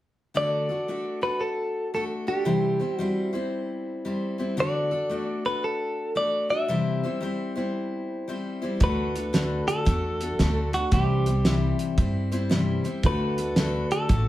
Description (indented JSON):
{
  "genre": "honky-tonk and classic country",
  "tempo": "114 BPM",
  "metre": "4/4",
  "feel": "swing 65% on 8ths",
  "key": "D mixolydian",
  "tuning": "A4 = 441 Hz",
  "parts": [
    { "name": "picked steel-string acoustic guitar", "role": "accompaniment", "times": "0.3-14.3 s", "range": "C3 to C5", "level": "-28 LUFS", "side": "left 2 dB", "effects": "none" },
    { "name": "direct-recorded clean electric guitar", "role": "melody", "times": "0.4-14.3 s", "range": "F#4 to E5", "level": "-27 LUFS", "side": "equal", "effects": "none" },
    { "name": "upright bass", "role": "bass", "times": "8.8-14.3 s", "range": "A1 to G2", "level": "-27 LUFS", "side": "equal", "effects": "none" },
    { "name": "cloth-damped thuddy drum kit", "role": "drums", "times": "8.8-14.3 s", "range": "hi-hat, kick drum, snare drum", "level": "-25 LUFS", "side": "right 1 dB", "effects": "none" }
  ],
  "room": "wet studio reverb, RT60 0.7 s",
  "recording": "heard from further back in the room",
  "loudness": "-24 LUFS",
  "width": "side -14 dB against mid",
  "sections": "0.4-8.8 A section; 8.8-14.3 B section",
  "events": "none",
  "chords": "0.4 D; 2.5 C; 4.6 D; 6.7 C; 8.8 D; 10.9 C; 13.0 D"
}